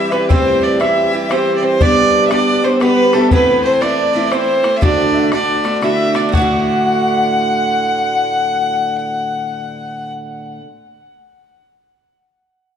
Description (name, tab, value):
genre	celtic folk, Celtic waltz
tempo	119 BPM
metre	3/4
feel	swing 64% on 8ths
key	D mixolydian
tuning	A4 = 445 Hz
part	clear fiddle	melody	0.0-10.1 s	A4 to F#5	-16 LUFS	right 1 dB	tape echo
part	Irish bouzouki	second line	0.0-10.6 s	A3 to F#4	-22 LUFS	right 5 dB	none
part	mellow soprano saxophone	second line	0.0-10.1 s	A4 to F#5	-22 LUFS	left 3 dB	none
part	picked steel-string acoustic guitar	accompaniment	0.0-10.7 s	D2 to G4	-17 LUFS	equal	none
part	bodhran	percussion	0.1-6.6 s	none	-20 LUFS	left 1 dB	none
room	wet recital hall reverb, RT60 1.5 s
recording	dark, warm production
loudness	-12 LUFS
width	side -8 dB against mid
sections	0.0-6.3 A section; 6.3-9.4 B section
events	none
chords	0.3 Am7; 1.8 G; 3.3 Am; 4.8 D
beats	| 0.30 0.80 1.30 | 1.81 2.31 2.81 | 3.32 3.82 4.32 | 4.83 5.33 5.83 | 6.33 6.84 7.34 | 7.84 8.35 8.85